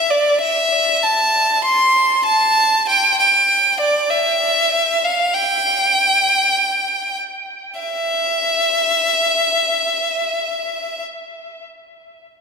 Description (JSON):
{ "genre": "rock", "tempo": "98 BPM", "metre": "4/4", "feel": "straight", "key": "unclear", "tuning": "A4 = 441 Hz", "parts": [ { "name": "clear violin", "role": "melody", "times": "0.0-11.0 s", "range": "D5 to C6", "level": "-14 LUFS", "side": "equal", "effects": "slapback echo, analog delay" } ], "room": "wet recital hall reverb, RT60 1.5 s, small room ambience", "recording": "big arena sound", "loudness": "-14 LUFS", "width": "side -5 dB against mid", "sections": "0.0-7.8 A section; 7.8-10.3 B section", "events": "none", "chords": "none" }